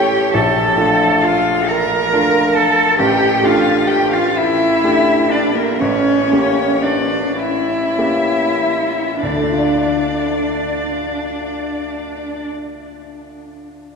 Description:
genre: classical, slow romantic movement for piano trio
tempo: 31-48 BPM (dotted quarters)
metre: 12/8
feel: rubato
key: D minor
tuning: A4 = 443 Hz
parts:
  - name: rich violin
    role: melody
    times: 0.0-12.5 s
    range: Bb4 to Bb5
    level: -21 LUFS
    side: left 7 dB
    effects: none
  - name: rich cello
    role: second line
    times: 0.0-12.5 s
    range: Bb3 to Bb4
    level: -17 LUFS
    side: right 2 dB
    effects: none
  - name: warm baby grand piano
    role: accompaniment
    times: 0.0-14.0 s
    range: A1 to D5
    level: -19 LUFS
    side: left 1 dB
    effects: none
room: wet cathedral reverb, RT60 5.4 s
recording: recorded in a church or concert hall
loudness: -13 LUFS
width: side -5 dB against mid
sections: 0.0-9.2 A section; 9.2-14.0 B section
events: slowing down 0.0-9.2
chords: 0.3 Bbmaj7; 3.0 A7sus4; 5.8 A7b9; 9.2 Dm

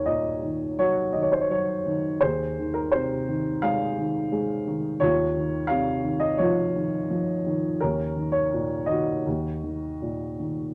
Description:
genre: classical, lyrical solo piano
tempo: 77-87 BPM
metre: 4/4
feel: rubato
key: Eb dorian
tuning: A4 = 440 Hz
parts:
  - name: dark upright piano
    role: solo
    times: 0.0-10.7 s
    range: Eb2 to F5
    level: -26 LUFS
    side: equal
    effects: none
room: moderate small room reverb, RT60 0.5 s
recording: none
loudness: -26 LUFS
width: mono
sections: 0.0-10.7 A section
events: none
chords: 0.0 Ebm; 2.2 Fm7/Eb; 5.0 Dbmaj7/Eb; 7.8 Ebm7; 9.2 Ebm

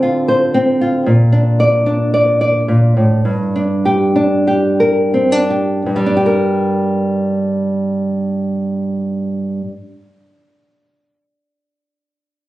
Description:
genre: folk, solo fingerstyle acoustic guitar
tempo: 84-117 BPM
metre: 4/4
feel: rubato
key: G minor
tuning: A4 = 439 Hz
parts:
  - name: nylon-string guitar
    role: solo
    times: 0.0-10.0 s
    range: G2 to D5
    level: -13 LUFS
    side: equal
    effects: none
room: moderate studio ambience, RT60 0.5 s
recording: recorded on a phone in the room, club reverb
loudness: -13 LUFS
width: side -16 dB against mid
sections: 0.0-5.9 A section; 5.9-11.4 B section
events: slowing down 1.0-5.9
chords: 0.0 Dm7; 1.0 Bb; 3.2 Gm

